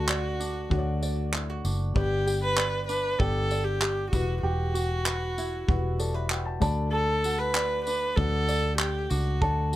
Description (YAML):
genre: acoustic pop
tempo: 96 BPM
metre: 4/4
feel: straight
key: D major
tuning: A4 = 441 Hz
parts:
  - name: warm viola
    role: melody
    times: 0.0-9.7 s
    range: F#4 to B4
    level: -29 LUFS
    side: equal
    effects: plate reverb
  - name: felt-muted upright piano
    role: accompaniment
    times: 0.0-9.8 s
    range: G3 to B5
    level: -36 LUFS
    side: left 6 dB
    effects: plate reverb
  - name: ukulele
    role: accompaniment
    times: 0.0-9.8 s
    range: D4 to D5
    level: -34 LUFS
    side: right 2 dB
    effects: plate reverb
  - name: vintage muted fingered electric bass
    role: bass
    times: 0.0-9.8 s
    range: E1 to D2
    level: -29 LUFS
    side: equal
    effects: none
  - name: loose indie drum kit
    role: drums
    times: 0.1-9.8 s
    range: handclaps, kick drum, tambourine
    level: -29 LUFS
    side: equal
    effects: none
room: light reverb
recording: none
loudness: -24 LUFS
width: side -14 dB against mid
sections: 0.0-9.8 A section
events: felt piano fill 5.7-6.9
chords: 0.0 D; 2.0 G; 4.1 Emadd9; 6.6 D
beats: 0.09 0.71 1.33 | 1.96 2.58 3.20 3.82 | 4.44 5.06 5.69 6.31 | 6.93 7.55 8.17 8.79 | 9.42